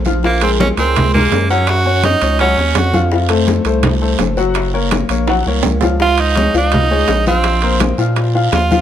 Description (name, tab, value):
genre	latin, salsa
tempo	166 BPM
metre	4/4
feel	straight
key	Bb minor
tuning	A4 = 440 Hz
part	saturated sub bass	bass	0.0-8.8 s	Gb1 to Bb2	-17 LUFS	right 1 dB	none
part	guiro	percussion	0.0-8.8 s	none	-29 LUFS	right 8 dB	none
part	warm upright piano	accompaniment	0.1-8.8 s	F3 to Gb5	-17 LUFS	left 4 dB	none
part	bongos	percussion	0.1-8.8 s	none	-26 LUFS	left 5 dB	none
part	congas	percussion	0.1-8.8 s	none	-21 LUFS	equal	none
part	edgy tenor saxophone	melody	0.3-3.0, 6.0-8.8 s	Bb3 to Gb4	-16 LUFS	right 4 dB	none
part	timbales	percussion	0.4-8.7 s	none	-22 LUFS	right 10 dB	none
room	light reverb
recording	none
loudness	-12 LUFS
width	side -10 dB against mid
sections	0.0-6.0 A section; 6.0-8.8 B section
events	drum fill 5.3-6.0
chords	0.2 Bbm7; 1.7 Gb5; 3.1 F; 4.6 Gbmaj7; 6.0 Dbadd9; 7.4 Bbsus2